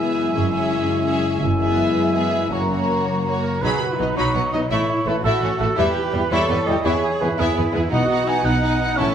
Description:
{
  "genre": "cinematic",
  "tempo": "112 BPM (dotted quarters)",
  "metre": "6/8",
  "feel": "straight",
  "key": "F# mixolydian, B mixolydian from 3.6 s",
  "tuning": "A4 = 442 Hz",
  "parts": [
    { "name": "warm symphonic violin section", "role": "melody", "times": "0.0-9.1 s", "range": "G4 to B5", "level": "-28 LUFS", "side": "left 3 dB", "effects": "none" },
    { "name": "hollow small flute group", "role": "second line", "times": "0.0-3.4 s", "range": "G#5 to A#5", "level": "-30 LUFS", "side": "left 1 dB", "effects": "none" },
    { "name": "mellow cor anglais", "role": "second line", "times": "0.0-9.1 s", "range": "G#4 to G#5", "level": "-25 LUFS", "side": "right 3 dB", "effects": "none" },
    { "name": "warm symphonic violin section", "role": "second line", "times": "0.0-9.1 s", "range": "G3 to G#4", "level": "-28 LUFS", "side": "left 2 dB", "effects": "none" },
    { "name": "rich symphonic viola section", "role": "accompaniment", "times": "0.0-9.1 s", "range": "F#3 to C#4", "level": "-27 LUFS", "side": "right 1 dB", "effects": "none" },
    { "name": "warm French horn section", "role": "sustained chords", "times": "0.0-9.1 s", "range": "G3 to E4", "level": "-25 LUFS", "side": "left 3 dB", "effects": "none" },
    { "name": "concert harp", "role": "arpeggios", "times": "0.0-9.1 s", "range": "F#2 to F#5", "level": "-29 LUFS", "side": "left 7 dB", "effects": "none" },
    { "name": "warm chamber cello section", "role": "bass", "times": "0.0-9.1 s", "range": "F#2 to A4", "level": "-26 LUFS", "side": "right 4 dB", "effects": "none" },
    { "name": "warm symphonic double bass section", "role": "bass", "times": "0.4-9.1 s", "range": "F#1 to E2", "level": "-25 LUFS", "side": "right 2 dB", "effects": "none" }
  ],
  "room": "wet recital hall reverb, RT60 1.5 s",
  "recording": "none",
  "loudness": "-18 LUFS",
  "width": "side -8 dB against mid",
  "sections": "0.0-3.6 A section; 3.6-9.1 B section",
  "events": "none",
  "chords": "0.3 C#m/F#; 1.4 E/F#; 2.5 F#; 3.6 B; 4.7 A; 5.8 Em; 6.8 E; 7.9 B",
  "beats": "| 0.35 0.88 | 1.41 1.96 | 2.51 3.07 | 3.63 4.17 | 4.71 5.24 | 5.78 6.32 | 6.85 7.38 | 7.92 8.45 | 8.99"
}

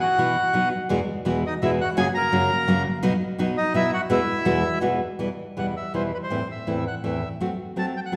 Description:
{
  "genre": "tango",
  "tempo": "167 BPM",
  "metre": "3/4",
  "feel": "rubato",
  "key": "E major",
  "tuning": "A4 = 440 Hz",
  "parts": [
    { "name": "bandoneon", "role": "melody", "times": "0.0-8.1 s", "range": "D#4 to A#5", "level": "-27 LUFS", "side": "equal", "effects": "none" },
    { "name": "nylon-string guitar", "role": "accompaniment", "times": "0.2-8.2 s", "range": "E2 to F#4", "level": "-26 LUFS", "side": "equal", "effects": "none" }
  ],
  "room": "wet recital hall reverb, RT60 1.4 s",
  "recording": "recorded in a church or concert hall",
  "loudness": "-24 LUFS",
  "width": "mono",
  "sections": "0.0-5.2 A section; 5.2-8.2 B section",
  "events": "none",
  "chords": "0.0 Bsus4; 0.5 B; 0.9 Eadd9; 2.0 F#; 3.0 B; 4.1 Eadd9; 5.2 Em; 6.3 Am/E; 7.4 F#dim",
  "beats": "0.18 0.54 | 0.91 1.26 1.62 | 1.98 2.33 2.68 | 3.04 3.39 3.74 | 4.09 4.45 4.82 | 5.19 5.56 5.93 | 6.30 6.67 7.03 | 7.39 7.75 8.12"
}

